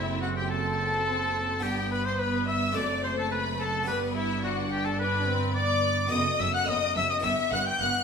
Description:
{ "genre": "classical, baroque-style concerto movement with solo episodes", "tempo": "107 BPM", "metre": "4/4", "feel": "straight", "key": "G major", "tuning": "A4 = 437 Hz", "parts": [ { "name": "clear oboe", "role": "melody", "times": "0.0-8.0 s", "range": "E4 to G5", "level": "-30 LUFS", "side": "left 3 dB", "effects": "none" }, { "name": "rich studio violin section", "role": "melody", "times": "0.0-8.0 s", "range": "E5 to G6", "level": "-32 LUFS", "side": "equal", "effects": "none" }, { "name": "rich studio violin section", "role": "second line", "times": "0.0-7.9 s", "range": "E4 to G5", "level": "-32 LUFS", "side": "left 4 dB", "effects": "none" }, { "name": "harpsichord", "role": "accompaniment", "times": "0.0-8.0 s", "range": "F#2 to A4", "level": "-37 LUFS", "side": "right 1 dB", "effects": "none" }, { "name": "rich chamber viola section", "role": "accompaniment", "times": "0.0-7.9 s", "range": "A3 to D4", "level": "-34 LUFS", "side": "equal", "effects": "none" }, { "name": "rich chamber cello section", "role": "bass", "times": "0.0-7.9 s", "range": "F#2 to G2", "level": "-35 LUFS", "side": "right 3 dB", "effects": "none" }, { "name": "rich chamber double bass section", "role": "bass", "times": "0.0-7.9 s", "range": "F#1 to G1", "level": "-35 LUFS", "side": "right 5 dB", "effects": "none" } ], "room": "wet recital hall reverb, RT60 1.5 s", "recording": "minimal, uncompressed stereo recording", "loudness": "-25 LUFS", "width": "side -6 dB against mid", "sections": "0.0-8.0 A section", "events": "none", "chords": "0.0 D7/F#; 1.6 G; 2.8 D7/F#; 3.9 G; 6.1 B5/F#; 7.2 Em/G" }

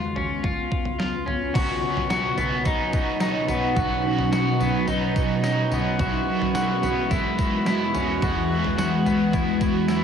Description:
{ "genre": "dream pop", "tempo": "108 BPM", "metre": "4/4", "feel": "straight", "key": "B major", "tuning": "A4 = 441 Hz", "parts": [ { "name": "ethereal airy pad", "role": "sustained chords", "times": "0.0-10.0 s", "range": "C#2 to F#4", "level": "-25 LUFS", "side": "equal", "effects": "ensemble chorus, built-in reverb, phaser" }, { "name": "electric guitar at the edge of break-up", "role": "arpeggios", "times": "0.0-10.0 s", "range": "B3 to F#4", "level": "-26 LUFS", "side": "left 2 dB", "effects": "lush chorus, diffuse ambient delay" }, { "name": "detuned 8-bit digital drum machine", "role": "drums", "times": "0.2-10.0 s", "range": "crash cymbal, kick drum, snare drum, tambourine, toms", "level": "-28 LUFS", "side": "right 1 dB", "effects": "overdrive" }, { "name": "biting overdriven guitar", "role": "accompaniment", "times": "1.5-10.0 s", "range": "B2 to F#4", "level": "-29 LUFS", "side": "right 2 dB", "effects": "harmonic tremolo, lush chorus" } ], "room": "wet plate reverb, RT60 1.9 s, digital ambience", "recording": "dreamy mix soaked in reverb", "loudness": "-21 LUFS", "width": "side -7 dB against mid", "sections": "0.0-1.6 A section; 1.6-10.0 B section", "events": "none", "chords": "0.0 C#7; 1.6 Badd9; 6.0 Eadd9" }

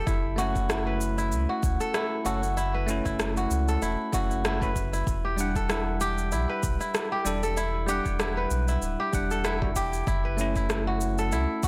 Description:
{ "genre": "organic downtempo", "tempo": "96 BPM", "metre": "4/4", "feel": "swing 56% on 16ths", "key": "unclear", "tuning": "A4 = 440 Hz", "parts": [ { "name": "kora", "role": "arpeggios", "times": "0.0-11.7 s", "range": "E4 to B4", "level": "-32 LUFS", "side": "equal", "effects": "digital delay" }, { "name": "warm sub bass", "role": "bass", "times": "0.0-11.7 s", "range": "D1 to C#2", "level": "-32 LUFS", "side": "equal", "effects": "sidechain pumping" }, { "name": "electronic kick drum", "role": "drums", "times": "0.1-11.7 s", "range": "none", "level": "-32 LUFS", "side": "equal", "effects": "none" }, { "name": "electronic shaker and rim click", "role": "drums", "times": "0.1-11.7 s", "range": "none", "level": "-35 LUFS", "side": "equal", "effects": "overdrive" }, { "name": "bell-like tine electric piano", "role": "accompaniment", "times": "0.4-11.7 s", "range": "G3 to F#5", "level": "-35 LUFS", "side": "equal", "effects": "subtle chorus, sidechain pumping, digital delay" } ], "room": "light reverb", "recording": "blown-out, overdriven recording, overdrive", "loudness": "-27 LUFS", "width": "mono", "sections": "0.0-11.7 A section", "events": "none", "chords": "0.1 F#m7; 5.1 Em7; 10.1 F#m7" }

